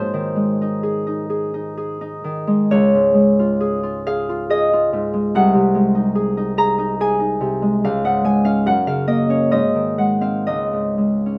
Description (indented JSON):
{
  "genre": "classical, solo harp piece",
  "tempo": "56-74 BPM",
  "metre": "3/4",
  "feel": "rubato",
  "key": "Db major",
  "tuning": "A4 = 440 Hz",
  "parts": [
    { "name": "Celtic harp", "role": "solo", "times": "0.0-11.4 s", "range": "C2 to Bb5", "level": "-18 LUFS", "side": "equal", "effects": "none" }
  ],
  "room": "light reverb",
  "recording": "none",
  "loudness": "-18 LUFS",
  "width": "mono",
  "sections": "0.0-11.4 A section",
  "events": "none",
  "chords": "0.0 Ab; 2.7 Db; 5.3 Ab7/C; 7.8 Db; 8.7 Gb; 9.5 Ab7; 10.5 Db",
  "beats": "0.83 1.77 | 2.72 3.62 4.51 | 5.34 6.17 7.01 | 7.83 8.66 9.52 | 10.48"
}